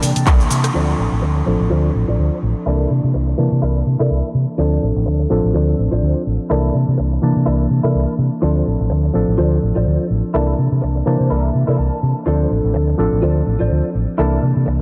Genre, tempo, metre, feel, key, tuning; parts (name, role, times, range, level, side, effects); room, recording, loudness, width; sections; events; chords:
filtered disco house; 125 BPM; 4/4; swing 56% on 16ths; D minor; A4 = 441 Hz
barky reed electric piano; accompaniment; 0.0-14.8 s; E3 to A5; -23 LUFS; equal; phaser, sidechain pumping, low-pass filter
direct-recorded clean electric guitar; riff; 0.0-14.8 s; E4 to A5; -27 LUFS; equal; ensemble chorus, sidechain pumping, low-pass filter
fingered electric bass; bass; 0.0-14.8 s; A1 to C3; -19 LUFS; equal; tube saturation, sidechain pumping, low-pass filter
house drum kit; drums; 0.0-0.7 s; handclaps, hi-hat, rim click, shaker; -26 LUFS; equal; sidechain pumping on hats, low-pass filter on hats, sidechain pumping on perc, low-pass filter on perc, low-pass filter on snare
moderate huge ambient reverb, RT60 5.8 s; dreamy mix soaked in reverb; -17 LUFS; mono
0.7-14.8 A section
clean electric guitar fill 0.0-0.7, 10.8-12.3; band accent 0.3
0.0 C13; 0.7 Dm7; 2.7 C13; 4.6 Dm7; 6.5 C13; 8.4 Dm7; 10.3 C13; 12.3 Dm7; 14.2 C13